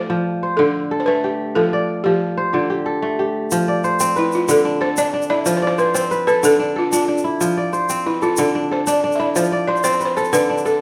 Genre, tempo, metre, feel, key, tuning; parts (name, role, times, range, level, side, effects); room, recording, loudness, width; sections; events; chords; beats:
west african traditional, West African string and xylophone music; 123 BPM (dotted quarters); 12/8; straight; F lydian; A4 = 440 Hz
balafon; melody; 0.0-10.8 s; E4 to E5; -22 LUFS; equal
kora; arpeggios; 0.0-10.8 s; D3 to D5; -21 LUFS; equal
tube shaker; percussion; 3.5-10.7 s; -30 LUFS; equal
moderate recital hall reverb, RT60 1.3 s; -18 LUFS; mono
0.0-3.5 A section; 3.5-10.8 B section
0.0 F; 0.6 D5; 1.6 F; 2.5 Dm; 3.5 F5; 4.5 D5; 5.5 F; 6.4 Dm; 7.4 F; 8.4 D5; 9.4 F
0.09 0.58 1.07 | 1.56 2.05 2.54 3.02 | 3.51 4.00 4.49 4.97 | 5.46 5.95 6.44 6.92 | 7.41 7.90 8.39 8.87 | 9.36 9.85 10.34